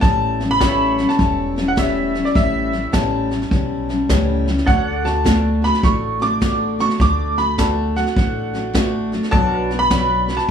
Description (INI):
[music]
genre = honky-tonk and classic country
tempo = 103 BPM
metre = 4/4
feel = swing 65% on 8ths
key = A major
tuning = A4 = 440 Hz
[part]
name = bright upright piano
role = melody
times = 0.0-10.5 s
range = D5 to D6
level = -21 LUFS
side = right 1 dB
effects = plate reverb
[part]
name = picked steel-string acoustic guitar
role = accompaniment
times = 0.0-10.5 s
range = A2 to F#4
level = -20 LUFS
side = left 2 dB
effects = none
[part]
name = upright bass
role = bass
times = 0.0-10.5 s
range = E1 to D2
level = -24 LUFS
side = equal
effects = none
[part]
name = vintage brush drum kit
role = drums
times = 0.0-10.5 s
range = hi-hat, kick drum, snare drum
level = -20 LUFS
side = equal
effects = none
[part]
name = pedal steel guitar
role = sustained chords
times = 0.6-10.5 s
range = A4 to F#5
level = -30 LUFS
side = right 2 dB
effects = none
[sound]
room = light reverb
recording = small room ambience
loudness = -16 LUFS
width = side -8 dB against mid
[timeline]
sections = 0.0-10.5 A section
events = none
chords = 0.0 A7; 4.7 D; 9.3 Bm